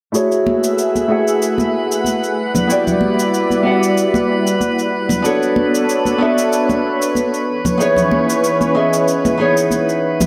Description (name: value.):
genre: sunset chillout.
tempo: 94 BPM.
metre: 4/4.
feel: swing 55% on 16ths.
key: F# minor.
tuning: A4 = 440 Hz.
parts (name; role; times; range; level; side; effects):
nylon-string guitar; accompaniment; 0.1-10.3 s; A3 to F#5; -20 LUFS; equal; low-pass filter, tape echo.
lush unison pad; sustained chords; 0.1-10.3 s; E3 to F#5; -21 LUFS; equal; chorus.
cabasa; drums; 0.1-10.3 s; none; -29 LUFS; equal; overdrive.
drifting glass-harmonics texture; texture; 0.6-10.3 s; B4 to B5; -26 LUFS; equal; chorus, built-in reverb.
congas; percussion; 0.5-10.3 s; none; -23 LUFS; equal; none.
room: wet scoring stage reverb, RT60 2.0 s.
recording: none.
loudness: -16 LUFS.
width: mono.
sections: 0.1-10.3 A section.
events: filter sweep on nylon-string guitar 0.1-10.3.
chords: 0.1 F#m9; 2.4 Em9; 5.2 Bm9; 7.5 C#m9.